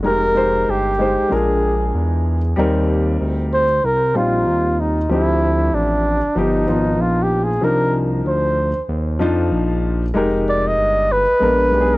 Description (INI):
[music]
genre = hip hop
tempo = 95 BPM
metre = 4/4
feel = swing 61% on 16ths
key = Eb major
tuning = A4 = 440 Hz
[part]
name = dark concert grand piano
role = accompaniment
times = 0.0-12.0 s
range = F3 to C5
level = -20 LUFS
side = left 2 dB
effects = none
[part]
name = smooth synth bass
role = bass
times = 0.0-12.0 s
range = F1 to F2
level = -21 LUFS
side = equal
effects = none
[part]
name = mellow flugelhorn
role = melody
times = 0.1-12.0 s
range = D4 to Eb5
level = -18 LUFS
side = equal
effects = cassette tape, tape echo
[sound]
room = moderate booth ambience, RT60 0.2 s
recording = home recording on cassette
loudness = -15 LUFS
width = side -19 dB against mid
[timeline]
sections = 0.0-2.6 A section; 2.6-12.0 B section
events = flugelhorn solo 2.6-12.0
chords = 0.1 Fm11; 1.3 Bb7; 2.6 Eb6; 5.1 Dm11; 6.4 G7alt; 7.6 Cm11; 10.2 Fm11; 11.4 Bb7b9